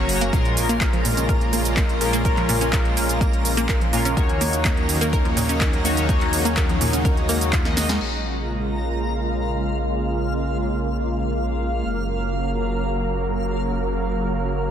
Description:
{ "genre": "progressive house", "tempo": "125 BPM", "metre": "4/4", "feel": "straight", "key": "Bb minor", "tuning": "A4 = 438 Hz", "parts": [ { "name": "supersaw pad", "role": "sustained chords", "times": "0.0-14.7 s", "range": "Db3 to Bb4", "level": "-26 LUFS", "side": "right 2 dB", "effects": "sidechain pumping, low-pass filter" }, { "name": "chorused polysynth", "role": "stabs", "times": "0.0-8.0 s", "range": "Bb2 to Eb5", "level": "-25 LUFS", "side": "left 2 dB", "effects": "sidechain pumping, dub echo" }, { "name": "dark detuned saw bass", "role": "bass", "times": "0.0-14.7 s", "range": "Gb1 to Bb1", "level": "-26 LUFS", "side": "equal", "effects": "sidechain pumping" }, { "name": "backwards swelling texture", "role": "texture", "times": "0.0-14.7 s", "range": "F4 to Bb5", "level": "-33 LUFS", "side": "left 2 dB", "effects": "built-in reverb, sidechain pumping" }, { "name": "deep house drum kit", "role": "drums", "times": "0.1-8.1 s", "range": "crash cymbal, handclaps, hi-hat, shaker, snare drum", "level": "-26 LUFS", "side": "right 2 dB", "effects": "low-pass filter on hats, low-pass filter on cymbals, low-pass filter on snare, low-pass filter on perc, low-pass filter on room" }, { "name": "wide unison pluck", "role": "arpeggios", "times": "0.2-8.0 s", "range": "Bb2 to Bb4", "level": "-26 LUFS", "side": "equal", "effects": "sidechain pumping, dub echo" }, { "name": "electronic kick drum", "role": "drums", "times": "0.3-7.6 s", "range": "none", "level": "-22 LUFS", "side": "equal", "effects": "none" } ], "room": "light reverb, digital ambience", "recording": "dense, heavily limited modern master", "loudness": "-19 LUFS", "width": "side -9 dB against mid", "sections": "0.0-8.0 A section; 8.0-14.7 B section", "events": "drum fill 7.7-8.0", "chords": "0.3 Bbm7; 4.2 Ebm7; 8.0 Bbm7; 11.9 Gb", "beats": "| 0.33 0.81 1.29 1.77 | 2.25 2.73 3.21 3.69 | 4.17 4.65 5.13 5.61 | 6.09 6.57 7.05 7.53 | 8.01 8.49 8.97 9.45 | 9.93 10.41 10.89 11.37 | 11.85 12.33 12.81 13.29 | 13.77 14.25" }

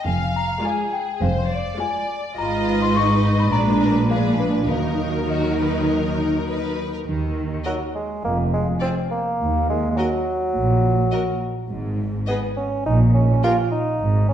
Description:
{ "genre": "cinematic, playful, whimsical film cue", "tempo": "104 BPM", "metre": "4/4", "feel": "straight", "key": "Eb minor", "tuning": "A4 = 440 Hz", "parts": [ { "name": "celesta", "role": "melody", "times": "0.0-6.7 s", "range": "Eb5 to Db6", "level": "-26 LUFS", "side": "left 4 dB", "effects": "none" }, { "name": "rich studio violin section", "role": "second line", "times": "0.0-13.5 s", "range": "Ab4 to F5", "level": "-30 LUFS", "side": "left 2 dB", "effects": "none" }, { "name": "clear studio double bass section", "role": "bass", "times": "0.1-14.3 s", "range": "F1 to Eb2", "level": "-24 LUFS", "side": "right 1 dB", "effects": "none" }, { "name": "dark studio cello section", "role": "bass", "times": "0.1-14.3 s", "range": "Eb2 to Eb3", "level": "-24 LUFS", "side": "right 1 dB", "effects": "none" }, { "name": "bright studio violin section", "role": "melody", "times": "0.6-13.5 s", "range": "Gb4 to G5", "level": "-32 LUFS", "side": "left 4 dB", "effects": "none" }, { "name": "rich studio viola section", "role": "accompaniment", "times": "0.6-13.5 s", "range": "Gb3 to Ab4", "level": "-24 LUFS", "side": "right 1 dB", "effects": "none" }, { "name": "clear bassoon", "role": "accompaniment", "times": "7.7-14.3 s", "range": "Gb3 to F4", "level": "-23 LUFS", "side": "right 1 dB", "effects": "none" } ], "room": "wet recital hall reverb, RT60 1.4 s", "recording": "dark, warm production", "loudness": "-19 LUFS", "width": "side -10 dB against mid", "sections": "0.0-7.1 A section; 7.1-14.3 B section", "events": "none", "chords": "0.1 Ddim/F; 2.4 Fdim/Ab; 3.5 Bb7b9; 4.7 Ebm; 8.2 N.C.; 9.4 Ebm; 11.7 N.C.; 12.9 Bbm", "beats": "| 0.06 0.64 1.21 1.79 | 2.37 2.94 3.52 4.10 | 4.69 5.29 5.89 6.48 | 7.07 7.66 8.24 8.82 | 9.40 9.98 10.55 11.13 | 11.70 12.28 12.86 13.43 | 14.01" }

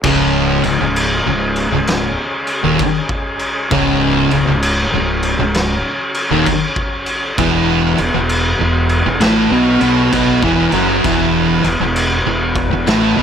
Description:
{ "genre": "stoner and doom metal", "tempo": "66 BPM", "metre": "4/4", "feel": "swing 65% on 8ths", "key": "C# minor", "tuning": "A4 = 440 Hz", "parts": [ { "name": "overdriven tonewheel organ", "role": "sustained chords", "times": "0.0-13.2 s", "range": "C#3 to F#4", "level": "-25 LUFS", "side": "equal", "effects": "slow rotary speaker" }, { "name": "thick fuzz guitar", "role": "riff", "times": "0.0-13.2 s", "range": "C#2 to B3", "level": "-18 LUFS", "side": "left 8 dB", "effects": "distortion" }, { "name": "thick fuzz guitar", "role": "riff", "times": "0.0-13.2 s", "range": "C#2 to B3", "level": "-17 LUFS", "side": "right 9 dB", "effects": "distortion" }, { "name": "fuzz fingered electric bass", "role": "bass", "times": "0.0-13.2 s", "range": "C#1 to B1", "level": "-21 LUFS", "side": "equal", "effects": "overdrive" }, { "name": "oversized low-tuned drum kit", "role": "drums", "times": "0.0-13.2 s", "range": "crash cymbal, kick drum, snare drum", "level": "-18 LUFS", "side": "equal", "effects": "none" } ], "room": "light reverb, studio reverb", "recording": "none", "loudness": "-13 LUFS", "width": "side -8 dB against mid", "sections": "0.0-13.2 A section", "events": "none", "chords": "0.0 C#5; 7.4 E5", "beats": "| 0.04 0.96 1.88 2.80 | 3.71 4.63 5.55 6.46 | 7.38 8.29 9.21 10.13 | 11.04 11.96 12.87" }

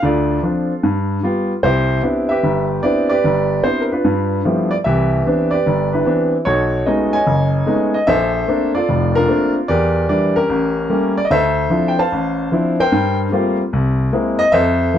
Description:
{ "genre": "solo jazz", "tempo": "149 BPM", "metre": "4/4", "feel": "swing 67% on 8ths", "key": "C major", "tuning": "A4 = 440 Hz", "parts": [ { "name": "warm baby grand piano", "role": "solo", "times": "0.0-15.0 s", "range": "F1 to A5", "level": "-14 LUFS", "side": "equal", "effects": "none" } ], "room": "light reverb", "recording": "dark, warm production", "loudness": "-14 LUFS", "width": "side -10 dB against mid", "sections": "0.0-4.8 A section; 4.8-15.0 B section", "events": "none", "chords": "0.0 Dm7; 0.8 G7; 1.6 Cmaj9; 4.0 G13; 4.8 Cmaj9; 6.5 B13; 8.1 Bbmaj9; 9.7 Em7b5; 10.5 A7b9; 11.3 Dm9; 12.9 Gm11; 13.7 Caug7", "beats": "| 0.02 0.42 0.83 1.23 | 1.63 2.03 2.43 2.83 | 3.24 3.64 4.04 4.44 | 4.84 5.25 5.65 6.05 | 6.46 6.86 7.26 7.67 | 8.07 8.47 8.88 9.28 | 9.68 10.09 10.49 10.89 | 11.30 11.70 12.11 12.51 | 12.91 13.32 13.72 14.13 | 14.53 14.94" }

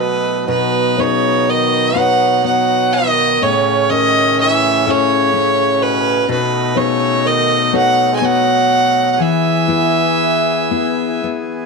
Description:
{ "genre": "celtic folk, Celtic slow air", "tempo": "41 BPM (dotted quarters)", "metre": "6/8", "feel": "uneven beats, rubato", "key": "unclear", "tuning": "A4 = 440 Hz", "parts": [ { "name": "clear fiddle", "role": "melody", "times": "0.0-11.2 s", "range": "B4 to G#5", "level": "-15 LUFS", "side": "right 1 dB", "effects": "none" }, { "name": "mellow bassoon", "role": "second line", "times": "0.0-11.2 s", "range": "B2 to G#3", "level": "-19 LUFS", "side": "right 13 dB", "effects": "none" }, { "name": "nylon-string guitar", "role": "accompaniment", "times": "0.0-11.7 s", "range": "A2 to B4", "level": "-19 LUFS", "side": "left 14 dB", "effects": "none" }, { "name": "accordion", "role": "sustained chords", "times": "0.0-11.7 s", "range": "A2 to D#5", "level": "-24 LUFS", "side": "left 1 dB", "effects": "none" } ], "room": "light reverb, studio reverb", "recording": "1960s-style stereo with parts hard left and right", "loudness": "-12 LUFS", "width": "side -3 dB against mid", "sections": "0.5-11.7 A section", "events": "none", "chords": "0.5 B; 3.4 A; 6.3 B7; 9.2 E", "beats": "| 0.48 1.98 | 3.43 4.87 | 6.29 7.72 | 9.19 10.71" }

